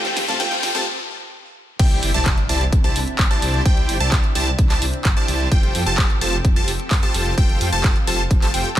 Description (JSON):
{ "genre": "EDM, festival progressive house", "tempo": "129 BPM", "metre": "4/4", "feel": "straight", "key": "F major", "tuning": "A4 = 440 Hz", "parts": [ { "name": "warm concert grand piano", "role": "accompaniment", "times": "0.0-0.8 s", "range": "C3 to F4", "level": "-33 LUFS", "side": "left 2 dB", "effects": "sidechain pumping, ping-pong delay" }, { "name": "lush unison pad", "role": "sustained chords", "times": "0.0-8.8 s", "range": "C3 to A4", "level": "-31 LUFS", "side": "equal", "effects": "chorus, sidechain pumping" }, { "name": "plucky unison lead", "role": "arpeggios", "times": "0.0-8.7 s", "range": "G5 to A5", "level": "-25 LUFS", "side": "equal", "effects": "phaser, sidechain pumping, ping-pong delay" }, { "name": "dense compressed supersaw", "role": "riff", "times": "0.0-8.7 s", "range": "E4 to A5", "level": "-26 LUFS", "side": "right 1 dB", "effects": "sidechain pumping, ping-pong delay" }, { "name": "detuned saw bass", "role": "bass", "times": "0.0-8.8 s", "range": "F1 to F2", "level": "-24 LUFS", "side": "equal", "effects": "sidechain pumping" }, { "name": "riser and impact", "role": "sound effects", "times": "0.0-3.7 s", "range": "none", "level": "-26 LUFS", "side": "left 1 dB", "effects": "none" }, { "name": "big-room dance drum kit", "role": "drums", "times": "0.1-8.8 s", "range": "crash cymbal, handclaps, hi-hat, snare drum", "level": "-25 LUFS", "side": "equal", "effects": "high-pass filter on snare, high-pass filter on hats, high-pass filter on cymbals" }, { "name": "electronic kick drum", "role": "drums", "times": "1.8-8.8 s", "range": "none", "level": "-17 LUFS", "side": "equal", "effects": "none" } ], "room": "digital ambience", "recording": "high-pass filter", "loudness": "-16 LUFS", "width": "side -12 dB against mid", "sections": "0.0-1.8 A section; 1.8-8.8 B section", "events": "build-up 0.0-1.8; drum fill 0.0-0.9; riser 0.0-0.9; break 0.9-1.8; drop 1.8-8.8; impact 1.8-3.7", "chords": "0.0 Fadd9; 1.8 Cadd9; 5.5 Fadd9" }